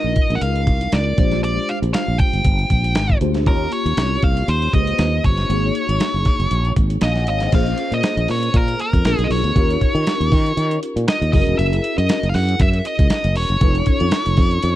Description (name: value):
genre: polished 1980s jazz-funk pop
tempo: 118 BPM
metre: 4/4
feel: swing 54% on 16ths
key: unclear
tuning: A4 = 440 Hz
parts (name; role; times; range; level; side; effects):
- nasal lead guitar with a parked wah; melody; 0.0-14.8 s; Bb4 to G5; -23 LUFS; equal; overdrive
- mellow tine electric piano; accompaniment; 0.0-14.8 s; Ab3 to Ab5; -24 LUFS; left 2 dB; medium stereo tremolo, ensemble chorus
- sustaining fretless electric bass; bass; 0.0-14.8 s; Fb1 to Eb3; -19 LUFS; equal; none
- dusty soul sampler-style drum kit; drums; 0.2-14.8 s; crash cymbal, hi-hat, kick drum, snare drum; -19 LUFS; equal; none
room: little or no reverb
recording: dry, close 1970s-style studio recording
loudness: -15 LUFS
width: side -14 dB against mid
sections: 0.0-7.5 A section; 7.5-14.8 B section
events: none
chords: 0.0 Db6; 1.2 Bb13; 3.5 Eb13; 5.5 Ab9sus4; 7.5 Bbm7; 9.1 Bb7b9; 9.6 Eb9; 11.3 Gb13; 13.6 F7b13